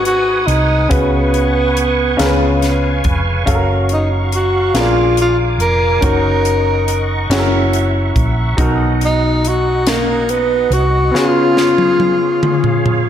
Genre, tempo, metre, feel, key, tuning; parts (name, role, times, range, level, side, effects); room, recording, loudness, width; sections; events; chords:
slow gospel; 47 BPM (dotted quarters); 6/8; straight; A4 = 440 Hz
breathy tenor saxophone; melody; 0.0-13.1 s; A#3 to A#4; -16 LUFS; equal; slapback echo
clear baby grand piano; accompaniment; 0.0-13.1 s; G#2 to E#5; -19 LUFS; left 1 dB; slapback echo
bright tonewheel organ; sustained chords; 0.0-13.1 s; F#4 to D#6; -23 LUFS; right 3 dB; slow rotary speaker, chorus vibrato
hollow-body short-scale fingered electric bass; bass; 0.0-11.1 s; E#1 to C#2; -17 LUFS; equal
crisp fusion drum kit; drums; 0.1-13.0 s; hi-hat, kick drum, snare drum, toms; -19 LUFS; equal
moderate concert hall reverb, RT60 1.8 s; big arena sound; -12 LUFS; side -10 dB against mid
0.0-13.1 A section
drum fill 11.1-13.1
0.0 G#m7; 0.9 C#7sus4; 2.2 C#7; 3.5 F#maj7; 4.7 A#7; 6.0 D#m7/F#; 7.3 F#7; 8.6 Bmaj7; 11.1 C#7